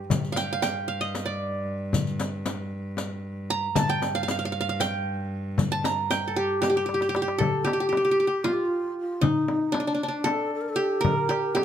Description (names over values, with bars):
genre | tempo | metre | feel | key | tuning
Turkish makam ensemble | 230 BPM (eighths) | 7/8 | straight | G makam nihavent | A4 = 440 Hz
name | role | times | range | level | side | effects
qanun | melody | 0.0-11.6 s | D4 to Bb5 | -26 LUFS | right 2 dB | none
bright cello | drone | 0.0-7.5 s | G2 | -34 LUFS | equal | none
darbuka | percussion | 0.1-11.6 s | none | -30 LUFS | left 3 dB | none
frame drum | percussion | 0.1-11.6 s | none | -30 LUFS | left 3 dB | none
riq | percussion | 0.1-7.1 s | none | -35 LUFS | left 3 dB | none
breathy low ney | second line | 6.6-11.6 s | D4 to Bb4 | -28 LUFS | left 2 dB | none
room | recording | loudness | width
moderate studio reverb, RT60 0.8 s | none | -24 LUFS | side -9 dB against mid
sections
0.0-7.4 A section; 7.4-11.6 B section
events
drum fill 6.9-7.4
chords
none